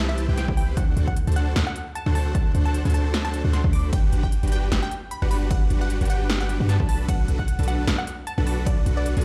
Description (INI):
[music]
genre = future bass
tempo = 152 BPM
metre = 4/4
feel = swing 55% on 16ths, half-time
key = G major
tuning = A4 = 440 Hz
[part]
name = dense compressed supersaw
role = riff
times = 0.0-9.2 s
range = D4 to B5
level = -32 LUFS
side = equal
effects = sidechain pumping, digital delay
[part]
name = warm 808-style bass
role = bass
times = 0.0-9.2 s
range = G1 to G2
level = -25 LUFS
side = equal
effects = sidechain pumping
[part]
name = unison pluck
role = melody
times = 0.1-9.2 s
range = D5 to D6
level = -36 LUFS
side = equal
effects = sidechain pumping, dub echo
[part]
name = big-room dance drum kit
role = drums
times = 0.2-9.2 s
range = hi-hat, ride cymbal, snare drum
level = -33 LUFS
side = equal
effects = none
[part]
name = electronic kick drum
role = drums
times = 0.5-8.8 s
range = none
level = -26 LUFS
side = equal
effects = none
[sound]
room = little or no reverb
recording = played on a big sound system in a bare room, large studio reverb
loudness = -23 LUFS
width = mono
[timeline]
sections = 0.0-9.2 A section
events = none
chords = 0.0 Cmaj7; 0.8 D7; 3.9 Gmaj7; 6.9 Bm7